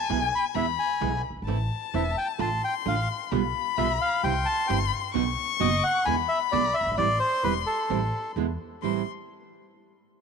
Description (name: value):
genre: tango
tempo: 131 BPM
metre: 4/4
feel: rubato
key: A minor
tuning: A4 = 440 Hz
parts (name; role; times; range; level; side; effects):
- bandoneon; melody; 0.0-8.3 s; A4 to B5; -27 LUFS; equal; none
- warm violin; second line; 0.0-9.0 s; G#5 to C#6; -29 LUFS; left 14 dB; none
- nylon-string guitar; accompaniment; 0.1-9.0 s; A2 to F#4; -30 LUFS; right 15 dB; none
- upright bass; bass; 0.1-9.0 s; E1 to E2; -31 LUFS; equal; none
room: light reverb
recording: 1960s-style stereo with parts hard left and right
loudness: -24 LUFS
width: side -6 dB against mid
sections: 0.0-8.8 A section; 8.8-10.2 B section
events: none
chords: 0.0 E; 1.5 Am; 2.4 Dm/A; 3.3 G7/B; 4.2 C; 5.1 B; 6.1 E7; 7.0 Am7; 8.4 E7; 8.8 Am7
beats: 0.10 0.56 1.01 | 1.48 1.94 2.40 2.86 | 3.32 3.77 4.23 4.69 | 5.14 5.60 6.05 6.51 | 6.97 7.43 7.89 8.36 | 8.82